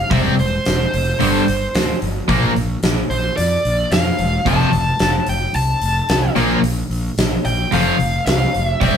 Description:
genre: hard rock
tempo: 110 BPM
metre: 4/4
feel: straight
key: unclear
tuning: A4 = 440 Hz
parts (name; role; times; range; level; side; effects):
- dark smooth lead guitar; melody; 0.0-9.0 s; C5 to A5; -20 LUFS; equal; overdrive
- fuzz fingered electric bass; bass; 0.0-9.0 s; E1 to F2; -20 LUFS; equal; overdrive
- cranked stack guitar; riff; 0.1-9.0 s; F2 to C4; -19 LUFS; left 6 dB; overdrive
- cranked stack guitar; riff; 0.1-9.0 s; F2 to C4; -20 LUFS; right 6 dB; overdrive
- huge arena drum kit; drums; 0.1-8.9 s; hi-hat, kick drum, snare drum; -21 LUFS; equal; none
room: wet studio reverb, RT60 0.7 s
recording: band playing live in one room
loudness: -15 LUFS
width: side -8 dB against mid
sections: 0.0-9.0 A section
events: none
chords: 0.1 C/E; 1.2 G5; 2.3 Bb; 4.5 F; 6.4 Bb5; 7.7 F5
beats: | 0.11 0.66 1.20 1.74 | 2.29 2.83 3.37 3.92 | 4.46 5.00 5.55 6.09 | 6.63 7.18 7.72 8.27 | 8.81

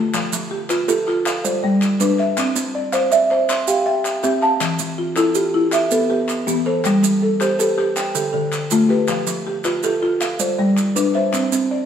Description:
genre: southern african traditional, mbira-style interlocking cycle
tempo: 107 BPM (dotted quarters)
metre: 12/8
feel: straight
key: G mixolydian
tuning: A4 = 443 Hz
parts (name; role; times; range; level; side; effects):
- buzzing marimba with medium mallets; arpeggios; 0.0-11.9 s; D3 to A5; -18 LUFS; left 2 dB; none
- kalimba; arpeggios; 0.0-11.9 s; D3 to C6; -21 LUFS; right 4 dB; none
- group handclap; percussion; 0.1-11.6 s; none; -29 LUFS; left 3 dB; none
- maracas; percussion; 0.1-11.7 s; none; -28 LUFS; right 7 dB; none
room: wet stone room reverb, RT60 1.2 s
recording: band playing live in one room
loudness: -16 LUFS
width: side -8 dB against mid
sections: 0.0-11.9 A section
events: none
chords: 0.1 F; 1.3 G; 2.4 C; 4.6 Em; 6.8 G; 8.0 Dm; 9.1 F; 10.2 G; 11.3 C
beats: | 0.14 0.70 1.26 1.82 | 2.38 2.94 3.49 4.05 | 4.61 5.17 5.73 6.29 | 6.85 7.41 7.97 8.53 | 9.09 9.65 10.21 10.77 | 11.34

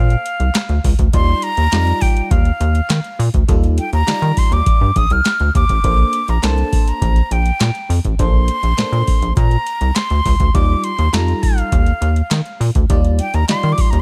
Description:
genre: early-eighties boogie funk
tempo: 102 BPM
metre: 4/4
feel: straight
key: unclear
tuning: A4 = 440 Hz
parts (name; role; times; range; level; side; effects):
- breathy concert flute; melody; 0.0-14.0 s; F5 to F6; -23 LUFS; equal; none
- FM electric piano; accompaniment; 0.0-14.0 s; G3 to D5; -27 LUFS; equal; chorus, phaser
- rubbery square bass; bass; 0.0-14.0 s; A1 to Eb3; -18 LUFS; equal; none
- booming analog drum machine; drums; 0.1-14.0 s; handclaps, hi-hat, kick drum, snare drum; -19 LUFS; equal; none
room: digital ambience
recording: none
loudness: -16 LUFS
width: mono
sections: 0.0-14.0 A section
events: none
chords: 0.0 Bbadd9; 1.1 Ebmaj9; 5.8 Bbmaj9; 10.5 Ebmaj9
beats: 0.55 | 1.13 1.72 2.31 2.90 | 3.49 4.07 4.66 5.25 | 5.84 6.43 7.02 7.60 | 8.19 8.78 9.37 9.96 | 10.54 11.13 11.72 12.31 | 12.90 13.49

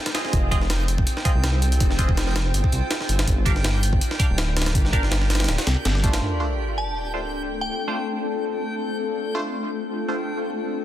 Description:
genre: drum and bass, jungle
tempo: 163 BPM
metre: 4/4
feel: swing 54% on 16ths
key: D minor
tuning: A4 = 437 Hz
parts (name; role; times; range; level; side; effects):
- backwards swelling texture; texture; 0.0-10.8 s; G5; -35 LUFS; right 4 dB; built-in reverb
- band-passed chord stab; stabs; 0.1-10.1 s; A3 to F5; -30 LUFS; right 2 dB; phaser, dub echo
- breakbeat sampler-style drum kit; drums; 0.1-6.2 s; hi-hat, kick drum, snare drum; -22 LUFS; equal; small room reverb
- granular cloud pad; sustained chords; 0.3-10.8 s; A3 to A4; -29 LUFS; left 2 dB; built-in reverb
- detuned saw bass; bass; 0.3-6.2 s; D1 to C2; -22 LUFS; equal; none
- sub drop; sound effects; 6.2-7.7 s; none; -29 LUFS; equal; none
- glassy synth bell; melody; 6.8-8.0 s; G5 to A5; -31 LUFS; equal; chorus, tremolo, dub echo
room: light reverb, digital ambience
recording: dense, heavily limited modern master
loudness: -20 LUFS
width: side -12 dB against mid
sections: 0.0-6.2 A section; 6.2-10.8 B section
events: impact 6.2-7.7; filter sweep on ambient pad 6.2-10.8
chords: 0.0 Fm7; 2.5 Gm7; 6.2 Dm7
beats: | 0.33 0.70 1.07 1.44 | 1.80 2.17 2.54 2.91 | 3.28 3.64 4.01 4.38 | 4.75 5.12 5.49 5.85 | 6.22 6.59 6.96 7.33 | 7.69 8.06 8.43 8.80 | 9.16 9.53 9.90 10.27 | 10.64

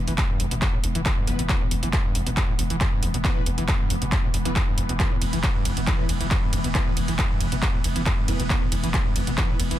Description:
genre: driving peak-time techno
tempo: 137 BPM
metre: 4/4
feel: straight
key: E minor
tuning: A4 = 440 Hz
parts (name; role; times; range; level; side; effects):
- growling 808-style bass; bass; 0.0-9.8 s; E1; -28 LUFS; equal; tube saturation, sidechain pumping, low-pass filter
- swarming drone; drone; 0.0-9.8 s; E3 to B3; -32 LUFS; equal; built-in reverb, sidechain pumping
- screaming distorted acid line; riff; 0.1-9.8 s; E2 to E3; -30 LUFS; equal; distortion, wide subtle chorus, sidechain pumping, ping-pong delay
- techno drum kit; drums; 0.1-9.8 s; handclaps, hi-hat, ride cymbal; -29 LUFS; right 1 dB; overdrive
- electronic kick drum; drums; 0.2-9.5 s; none; -24 LUFS; equal; none
- rave stab; stabs; 1.3-9.6 s; E3 to B4; -36 LUFS; equal; chorus, built-in reverb, sidechain pumping, ping-pong delay
room: little or no reverb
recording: dense, heavily limited modern master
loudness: -21 LUFS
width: side -13 dB against mid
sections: 0.0-9.8 A section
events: none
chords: 0.0 E5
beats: 0.18 0.62 1.06 | 1.49 1.93 2.37 2.81 | 3.25 3.68 4.12 4.56 | 5.00 5.43 5.87 6.31 | 6.75 7.19 7.62 8.06 | 8.50 8.94 9.38

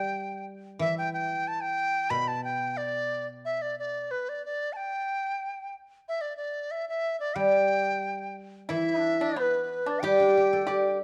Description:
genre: chinese traditional, Chinese chamber ensemble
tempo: 92 BPM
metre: 2/4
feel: rubato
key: G gong mode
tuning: A4 = 439 Hz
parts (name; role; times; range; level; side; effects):
- bright reedy large dizi; melody; 0.0-11.0 s; B4 to B5; -32 LUFS; equal; none
- guzheng; accompaniment; 0.0-4.1, 7.4-11.0 s; B2 to D5; -31 LUFS; equal; none
- mellow low xiao; second line; 8.7-11.0 s; E4 to B4; -29 LUFS; equal; none
- pipa; second line; 8.7-11.0 s; B3 to G4; -36 LUFS; equal; none
room: moderate recital hall reverb, RT60 1.6 s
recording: dark, warm production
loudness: -28 LUFS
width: mono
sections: 0.0-8.7 A section; 8.7-11.0 B section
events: none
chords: none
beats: 0.15 | 0.80 1.45 | 2.10 2.77 | 3.44 4.11 | 4.77 5.42 | 6.07 6.72 | 7.37 8.03 | 8.70 9.37 | 10.02 10.66

